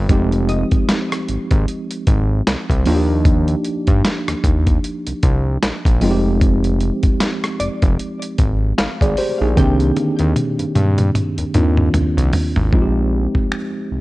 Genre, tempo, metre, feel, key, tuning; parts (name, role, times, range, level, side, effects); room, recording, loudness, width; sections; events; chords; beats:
contemporary R&B; 76 BPM; 4/4; swing 58% on 16ths; F dorian; A4 = 441 Hz
tine electric piano; accompaniment; 0.0-14.0 s; Eb3 to D5; -20 LUFS; right 1 dB; overdrive, fast stereo tremolo
fat analog bass; bass; 0.0-14.0 s; F1 to G2; -18 LUFS; equal
dusty soul sampler-style drum kit; drums; 0.1-13.7 s; finger snaps, hi-hat, kick drum, rim click, snare drum, toms; -17 LUFS; equal; overdrive
glassy wavetable pluck; texture; 0.5-1.9, 7.6-11.0 s; D5 to G5; -30 LUFS; left 2 dB; chorus, ping-pong delay
digital ambience; worn, warbling old tape, cassette tape, warbly pitch drift; -15 LUFS; side -19 dB against mid
0.0-12.7 A section; 12.7-14.0 B section
drum fill 9.6-12.7
0.1 Fm7; 2.9 Ebmaj7; 6.0 Fm7; 9.6 Cm9; 12.7 Bb13sus4
| 0.10 0.89 1.68 2.47 | 3.26 4.04 4.83 5.62 | 6.41 7.20 7.99 8.78 | 9.57 10.36 11.15 11.94 | 12.73 13.52